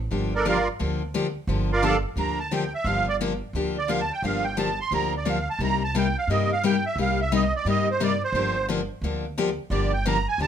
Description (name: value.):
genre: acoustic string swing (jazz manouche).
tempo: 175 BPM.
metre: 4/4.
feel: swing 62% on 8ths.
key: G minor.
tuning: A4 = 442 Hz.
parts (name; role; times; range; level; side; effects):
upright bass; bass; 0.0-10.5 s; G1 to G2; -29 LUFS; right 1 dB; none.
picked steel-string acoustic guitar; accompaniment; 0.1-10.5 s; C3 to G4; -26 LUFS; left 5 dB; none.
musette accordion; melody; 0.3-10.5 s; D4 to C6; -25 LUFS; right 4 dB; plate reverb.
room: moderate studio reverb, RT60 0.6 s.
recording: none.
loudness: -22 LUFS.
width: side -8 dB against mid.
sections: 0.1-10.5 A section.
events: accordion solo 0.1-10.5.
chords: 0.1 Gm7; 5.6 Cm7; 8.3 Gm7.